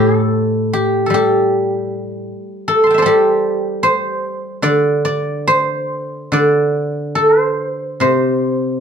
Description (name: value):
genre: chinese traditional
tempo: 70-78 BPM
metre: 4/4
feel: rubato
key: G zhi mode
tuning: A4 = 439 Hz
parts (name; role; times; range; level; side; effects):
- guzheng; solo; 0.0-8.8 s; A2 to C6; -14 LUFS; equal; none
room: moderate studio reverb, RT60 0.7 s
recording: band playing live in one room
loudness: -13 LUFS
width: side -7 dB against mid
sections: 0.0-8.8 A section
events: none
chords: none